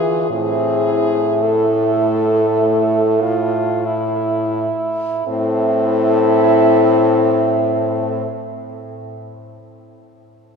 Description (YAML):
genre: classical, lyrical piece for horn quartet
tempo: 41-56 BPM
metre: 4/4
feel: rubato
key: A minor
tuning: A4 = 440 Hz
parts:
  - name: clear French horn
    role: melody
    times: 0.0-8.3 s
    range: G#4 to A4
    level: -21 LUFS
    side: left 4 dB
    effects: none
  - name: warm French horn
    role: second line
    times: 0.0-8.3 s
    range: E4 to F4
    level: -19 LUFS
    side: right 4 dB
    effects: none
  - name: clear French horn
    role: bass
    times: 0.0-8.3 s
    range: A2 to E3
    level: -22 LUFS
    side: right 1 dB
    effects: none
  - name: warm French horn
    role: accompaniment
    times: 0.3-8.3 s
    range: A3 to F4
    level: -20 LUFS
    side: left 3 dB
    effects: none
room: wet cathedral reverb, RT60 4.8 s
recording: minimal, uncompressed stereo recording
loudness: -14 LUFS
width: side -5 dB against mid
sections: 0.0-5.3 A section; 5.3-10.6 B section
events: slowing down 0.0-5.3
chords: 0.3 Am